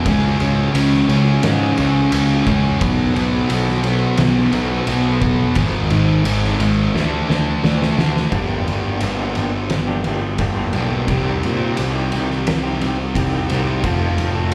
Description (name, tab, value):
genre	quiet-loud alternative rock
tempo	87 BPM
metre	4/4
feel	straight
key	unclear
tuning	A4 = 441 Hz
part	fuzz guitar	riff	0.0-14.5 s	F2 to D4	-23 LUFS	equal	distortion
part	thick fuzz guitar	riff	0.0-8.3 s	G#2 to D4	-26 LUFS	equal	distortion, slapback echo
part	fuzz picked electric bass	bass	0.1-14.5 s	F1 to A#2	-22 LUFS	equal	overdrive
part	oversized low-tuned drum kit	drums	0.1-14.5 s	kick drum, ride cymbal, snare drum	-25 LUFS	equal	none
part	electric guitar through a small old amp	arpeggios	8.3-14.5 s	G2 to A4	-27 LUFS	equal	tremolo, slapback echo
room	little or no reverb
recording	live gig heard through the venue's PA, club reverb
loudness	-18 LUFS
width	mono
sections	0.0-8.3 A section; 8.3-14.5 B section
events	drum fill 6.9-8.3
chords	0.1 C#5; 2.8 B5; 5.6 G#5; 6.9 D5; 8.3 Gm; 11.1 Cm; 13.8 F